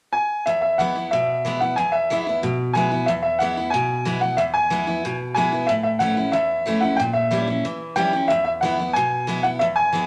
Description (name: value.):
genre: rock.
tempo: 184 BPM.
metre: 4/4.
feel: straight.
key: E major.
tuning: A4 = 442 Hz.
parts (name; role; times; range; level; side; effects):
clear upright piano; melody; 0.1-10.1 s; E5 to G#5; -23 LUFS; equal; none.
picked steel-string acoustic guitar; accompaniment; 0.5-10.1 s; E2 to E4; -26 LUFS; equal; none.
room: moderate large studio reverb, RT60 1.1 s.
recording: none.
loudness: -21 LUFS.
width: mono.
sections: 0.5-10.1 A section.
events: none.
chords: 0.5 E; 5.7 A; 7.0 A#dim7; 8.3 E.